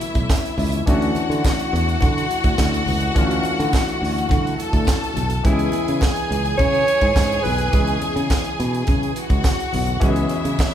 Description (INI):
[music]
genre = disco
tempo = 105 BPM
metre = 4/4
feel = straight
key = unclear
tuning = A4 = 441 Hz
[part]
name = clear studio string section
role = second line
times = 0.0-10.7 s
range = E4 to A5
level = -25 LUFS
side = left 2 dB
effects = none
[part]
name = clear concert grand piano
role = accompaniment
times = 0.0-10.7 s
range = E3 to G#4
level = -27 LUFS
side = left 2 dB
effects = none
[part]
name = mellow French horn section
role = sustained chords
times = 0.0-10.7 s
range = C#3 to C#5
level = -31 LUFS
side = right 2 dB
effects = none
[part]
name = tight funk drum kit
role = drums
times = 0.0-10.7 s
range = hi-hat, kick drum, snare drum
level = -21 LUFS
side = right 1 dB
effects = none
[part]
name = congas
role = percussion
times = 0.0-10.7 s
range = none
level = -31 LUFS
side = left 2 dB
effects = none
[part]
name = modern bright fingered electric bass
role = bass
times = 0.2-10.6 s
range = B1 to D3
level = -23 LUFS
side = equal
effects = none
[part]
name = tambourine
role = percussion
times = 0.3-10.7 s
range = none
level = -37 LUFS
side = right 6 dB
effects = none
[part]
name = warm alto saxophone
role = melody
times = 5.5-8.0 s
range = E4 to C#5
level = -21 LUFS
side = right 1 dB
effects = none
[sound]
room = moderate large studio reverb, RT60 1.1 s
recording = band playing live in one room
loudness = -17 LUFS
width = side -10 dB against mid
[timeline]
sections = 0.0-10.7 A section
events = none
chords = 0.0 B9sus4; 0.9 Dmaj9; 5.4 C#m7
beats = 0.30 | 0.87 1.44 2.01 2.59 | 3.16 3.73 4.30 4.88 | 5.45 6.02 6.59 7.16 | 7.74 8.31 8.88 9.45 | 10.02 10.59